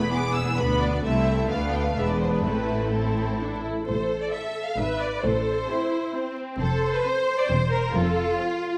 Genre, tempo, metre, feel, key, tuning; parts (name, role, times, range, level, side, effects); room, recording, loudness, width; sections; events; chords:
quick classical-period movement for string orchestra; 132 BPM; 3/4; rubato; A minor; A4 = 440 Hz
clear symphonic violin section; melody; 0.0-8.7 s; C4 to E6; -34 LUFS; equal
clear symphonic violin section; second line; 0.0-8.8 s; D4 to F5; -30 LUFS; equal
clear symphonic viola section; accompaniment; 0.0-8.8 s; G#3 to C5; -31 LUFS; equal
clear symphonic double bass section; bass; 0.0-8.3 s; E1 to D2; -32 LUFS; equal
warm chamber cello section; bass; 0.0-8.3 s; C2 to A2; -31 LUFS; equal
wet recital hall reverb, RT60 1.5 s; vinyl crackle; -25 LUFS; mono
0.0-3.9 A section; 3.9-8.8 B section
0.0 E; 0.6 Bm/D; 1.0 Am/C; 1.5 Bm7b5/D; 2.0 E7; 2.4 Am; 3.9 A5; 4.8 E7/G#; 5.2 Am; 6.6 F5; 7.5 C7/E; 7.9 F